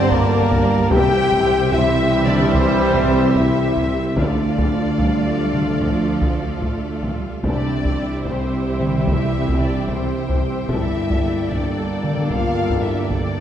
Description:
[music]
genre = cinematic, epic orchestral film score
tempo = 74 BPM (dotted quarters)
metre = 12/8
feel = straight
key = unclear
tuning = A4 = 441 Hz
[part]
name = rich symphonic violin section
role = melody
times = 0.0-13.4 s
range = Bb4 to G5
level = -30 LUFS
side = left 3 dB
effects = none
[part]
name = warm symphonic violin section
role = second line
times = 0.0-13.4 s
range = Bb4 to G5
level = -29 LUFS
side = left 2 dB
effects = none
[part]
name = rich symphonic viola section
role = accompaniment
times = 0.0-13.4 s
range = F4 to F5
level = -31 LUFS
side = right 2 dB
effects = none
[part]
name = bright trombone section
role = sustained chords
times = 0.0-13.4 s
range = D3 to Bb3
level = -28 LUFS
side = right 2 dB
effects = none
[part]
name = mellow French horn section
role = sustained chords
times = 0.0-13.4 s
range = Bb3 to G4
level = -23 LUFS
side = left 4 dB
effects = none
[part]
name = rich symphonic string section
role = sustained chords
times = 0.0-13.4 s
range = G3 to A5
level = -29 LUFS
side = equal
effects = none
[part]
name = dark tuba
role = bass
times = 0.0-13.4 s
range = G1 to D2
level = -25 LUFS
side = right 3 dB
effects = none
[part]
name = rich symphonic cello section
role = bass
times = 0.0-13.4 s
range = G2 to A3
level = -26 LUFS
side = right 3 dB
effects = none
[part]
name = rich symphonic double bass section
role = bass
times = 0.0-13.4 s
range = G1 to D2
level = -26 LUFS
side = right 3 dB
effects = none
[part]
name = taiko ensemble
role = drums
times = 0.1-13.4 s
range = none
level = -23 LUFS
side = equal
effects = none
[part]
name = timpani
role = percussion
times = 4.2-4.9 s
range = D3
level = -28 LUFS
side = equal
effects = none
[sound]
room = wet scoring stage reverb, RT60 1.8 s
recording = none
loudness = -16 LUFS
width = side -10 dB against mid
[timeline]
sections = 0.0-13.4 A section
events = none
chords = 0.0 Gmadd9; 0.9 C; 4.2 Dm; 7.4 C; 10.7 Gmadd9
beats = 0.11 | 0.93 1.74 2.54 3.35 | 4.17 4.99 5.81 6.63 | 7.45 8.26 9.07 9.89 | 10.70 11.51 12.31 13.11

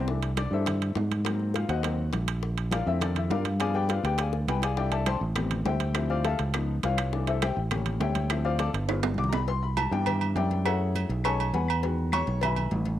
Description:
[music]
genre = Afro-Cuban jazz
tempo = 204 BPM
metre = 4/4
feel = straight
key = unclear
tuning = A4 = 440 Hz
[part]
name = warm upright piano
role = accompaniment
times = 0.0-13.0 s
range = D3 to D6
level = -30 LUFS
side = left 6 dB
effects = cassette tape
[part]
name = fingered electric bass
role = bass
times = 0.0-13.0 s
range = G1 to Ab2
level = -28 LUFS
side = right 1 dB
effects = none
[part]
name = bongos and cowbell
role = percussion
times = 0.1-13.0 s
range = none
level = -38 LUFS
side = left 9 dB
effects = none
[part]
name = congas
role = percussion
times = 0.1-13.0 s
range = none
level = -37 LUFS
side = equal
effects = none
[part]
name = timbales and agogo bells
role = percussion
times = 0.2-12.7 s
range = none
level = -33 LUFS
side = right 10 dB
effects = none
[part]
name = claves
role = percussion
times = 5.1-12.6 s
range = none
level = -40 LUFS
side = left 7 dB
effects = none
[sound]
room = light reverb, studio reverb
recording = home recording on cassette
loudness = -25 LUFS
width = side -12 dB against mid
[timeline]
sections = 0.1-9.5 A section; 9.5-13.0 A section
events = upright piano solo 0.1-13.0; drum fill 4.3-4.8, 8.9-9.5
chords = 0.1 C6; 1.3 Ab9; 2.4 Bbmaj7; 3.6 G7b9; 4.8 C69; 5.4 Am9; 6.0 Dm11; 6.5 Db9; 7.1 C6; 7.7 A7b9; 8.3 Dm7; 8.9 G7b9; 9.5 Cmaj9; 10.7 F#m7; 11.2 B13; 11.8 Emaj7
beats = | 0.08 0.37 0.66 0.96 | 1.25 1.54 1.84 2.13 | 2.42 2.72 3.01 3.31 | 3.60 3.90 4.19 4.48 | 4.78 5.07 5.36 5.66 | 5.95 6.25 6.54 6.83 | 7.13 7.42 7.71 8.01 | 8.30 8.60 8.89 9.18 | 9.48 9.77 10.07 10.36 | 10.65 10.95 11.24 11.54 | 11.83 12.13 12.42 12.71

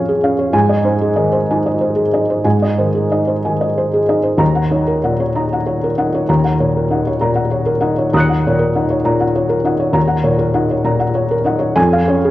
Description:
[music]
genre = neoclassical minimalist piano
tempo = 61-66 BPM (dotted quarters)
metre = 6/8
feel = rubato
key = Eb dorian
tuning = A4 = 439 Hz
[part]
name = felt-muted upright piano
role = solo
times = 0.0-12.3 s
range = Eb2 to Db7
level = -13 LUFS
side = equal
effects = none
[sound]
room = moderate recital hall reverb, RT60 1.3 s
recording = worn, warbling old tape, cassette tape, warbly pitch drift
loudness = -13 LUFS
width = side -15 dB against mid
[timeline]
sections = 0.0-4.4 A section; 4.4-12.3 A section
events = none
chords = 0.0 Db/F; 0.5 Ab; 4.4 Ebm7; 11.8 Db/F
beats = | 0.53 1.48 | 2.45 3.43 | 4.40 5.35 | 6.28 7.20 | 8.13 9.05 | 9.96 10.87 | 11.77

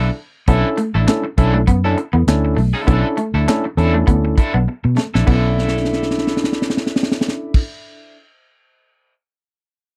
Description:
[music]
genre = funk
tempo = 100 BPM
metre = 4/4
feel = swing 56% on 16ths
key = B minor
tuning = A4 = 440 Hz
[part]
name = electric guitar at the edge of break-up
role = accompaniment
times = 0.0-8.2 s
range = D4 to A4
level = -27 LUFS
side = equal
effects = harmonic tremolo
[part]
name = vintage muted fingered electric bass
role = bass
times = 0.0-7.6 s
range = A1 to B2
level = -19 LUFS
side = equal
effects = none
[part]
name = electric guitar at the edge of break-up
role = riff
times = 0.5-6.7 s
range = A3 to B3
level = -25 LUFS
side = equal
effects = lush chorus
[part]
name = barky tine electric piano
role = stabs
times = 0.5-7.6 s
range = C#4 to A4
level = -24 LUFS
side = equal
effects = overdrive
[part]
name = tight funk drum kit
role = drums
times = 0.5-9.1 s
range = crash cymbal, handclaps, hi-hat, kick drum, snare drum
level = -19 LUFS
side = equal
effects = none
[sound]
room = little or no reverb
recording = dry, close 1970s-style studio recording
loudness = -17 LUFS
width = mono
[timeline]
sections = 0.5-5.3 A section; 5.3-7.7 B section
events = band accent 0.0-0.5; drum fill 4.7-5.3, 5.6-7.5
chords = 0.5 Bm11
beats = | 0.48 1.08 1.68 2.28 | 2.88 3.48 4.08 4.68 | 5.28 5.88 6.48 7.08

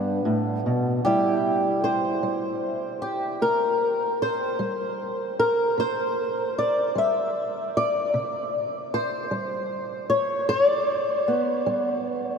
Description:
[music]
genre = acoustic country blues, solo or duo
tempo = 51 BPM (dotted quarters)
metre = 12/8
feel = straight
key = unclear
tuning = A4 = 441 Hz
[part]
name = fingerpicked old ladder-braced acoustic guitar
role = solo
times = 0.0-12.4 s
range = G2 to E5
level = -22 LUFS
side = equal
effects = analog chorus, diffuse ambient delay
[sound]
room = wet huge ambient reverb, RT60 6.9 s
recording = dreamy mix soaked in reverb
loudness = -22 LUFS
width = side -6 dB against mid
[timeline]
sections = 0.0-12.4 A section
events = none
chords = 0.0 G; 1.0 C; 10.5 G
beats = | 1.05 2.23 3.42 4.60 | 5.78 6.96 8.14 9.32 | 10.49 11.66

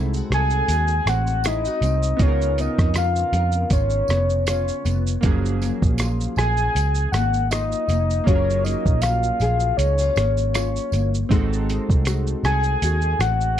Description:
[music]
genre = indie pop, bedroom pop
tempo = 79 BPM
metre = 4/4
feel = swing 55% on 16ths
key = F# major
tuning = A4 = 442 Hz
[part]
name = chorused retro synth keys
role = accompaniment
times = 0.0-13.6 s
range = E#3 to A#4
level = -32 LUFS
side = right 7 dB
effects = cassette tape
[part]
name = nylon-string guitar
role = accompaniment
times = 0.0-13.6 s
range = C#3 to A#4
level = -29 LUFS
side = left 6 dB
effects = ensemble chorus, warbly pitch drift
[part]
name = vintage muted picked electric bass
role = bass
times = 0.0-13.6 s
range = E#1 to E#2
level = -22 LUFS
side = right 1 dB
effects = none
[part]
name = lo-fi sampler-style drum kit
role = drums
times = 0.1-13.6 s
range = hi-hat, kick drum, rim click, shaker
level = -23 LUFS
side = right 1 dB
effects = none
[part]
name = soft octave-layered synth lead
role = melody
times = 0.3-13.6 s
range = C#5 to G#5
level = -23 LUFS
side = left 2 dB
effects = wide subtle chorus, tape echo
[part]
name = tambourine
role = percussion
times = 0.7-13.4 s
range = none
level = -39 LUFS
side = right 19 dB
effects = none
[sound]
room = little or no reverb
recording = dry, close 1970s-style studio recording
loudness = -18 LUFS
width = side -10 dB against mid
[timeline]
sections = 0.0-13.6 A section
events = none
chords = 0.0 G#7b9; 2.2 C#13; 5.2 F#maj9; 11.3 G#7b9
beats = 0.69 1.45 | 2.20 2.96 3.72 4.47 | 5.23 5.99 6.75 7.51 | 8.27 9.03 9.79 10.55 | 11.31 12.07 12.83 13.60

